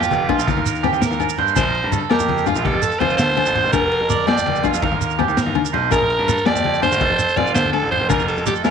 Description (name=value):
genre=highlife guitar band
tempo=110 BPM (dotted quarters)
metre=12/8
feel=straight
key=Bb major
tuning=A4 = 440 Hz
part: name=growling alto saxophone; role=melody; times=0.0-8.7 s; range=F4 to D5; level=-20 LUFS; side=right 1 dB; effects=none
part: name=electric guitar at the edge of break-up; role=arpeggios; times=0.0-8.7 s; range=F4 to D5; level=-22 LUFS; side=right 12 dB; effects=lush chorus
part: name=congas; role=percussion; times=0.0-8.6 s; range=none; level=-27 LUFS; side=left 8 dB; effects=none
part: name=shekere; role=percussion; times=0.0-8.7 s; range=none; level=-27 LUFS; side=right 6 dB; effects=none
part: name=bright concert grand piano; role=bass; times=0.1-8.7 s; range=F1 to G2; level=-23 LUFS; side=left 1 dB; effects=none
part: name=crunchy breakbeat drum kit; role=drums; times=0.1-8.7 s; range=kick drum, ride cymbal, snare drum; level=-26 LUFS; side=equal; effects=none
part: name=nylon-string guitar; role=accompaniment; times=0.3-8.7 s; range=Bb3 to D4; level=-26 LUFS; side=left 12 dB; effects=none
part: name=agogo bells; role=percussion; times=0.3-8.7 s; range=none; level=-28 LUFS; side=left 13 dB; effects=none
room=moderate plate reverb, RT60 1.7 s, small room reverb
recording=1960s-style stereo with parts hard left and right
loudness=-16 LUFS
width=side -7 dB against mid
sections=0.0-8.7 A section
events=drum fill 1.0-1.6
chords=0.5 Eb6; 1.6 Bb; 2.6 F; 3.7 Bb/F; 4.8 Eb6; 5.9 Bb; 7.0 F; 8.1 Bb/F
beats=0.47 1.01 | 1.56 2.10 2.65 3.19 | 3.74 4.28 4.83 5.37 | 5.92 6.46 7.01 7.55 | 8.10 8.64